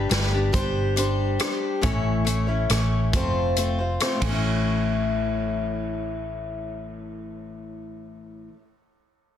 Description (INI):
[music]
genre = folk rock and heartland rock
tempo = 138 BPM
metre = 3/4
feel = straight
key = A mixolydian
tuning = A4 = 441 Hz
[part]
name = picked steel-string acoustic guitar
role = accompaniment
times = 0.0-8.6 s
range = A2 to C#5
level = -26 LUFS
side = left 3 dB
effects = none
[part]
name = hollow-body short-scale fingered electric bass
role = bass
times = 0.0-8.5 s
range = F1 to A1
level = -26 LUFS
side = right 1 dB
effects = none
[part]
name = vintage drum kit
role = drums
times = 0.1-4.3 s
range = hi-hat, kick drum, ride cymbal, rim click, snare drum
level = -28 LUFS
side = equal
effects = none
[sound]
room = light reverb, small room ambience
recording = dense, heavily limited modern master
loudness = -22 LUFS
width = side -10 dB against mid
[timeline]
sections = 0.0-4.4 A section; 4.4-7.1 B section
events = drum fill 4.2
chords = 0.0 G; 0.5 Csus2/G; 1.8 A; 3.1 F; 4.2 A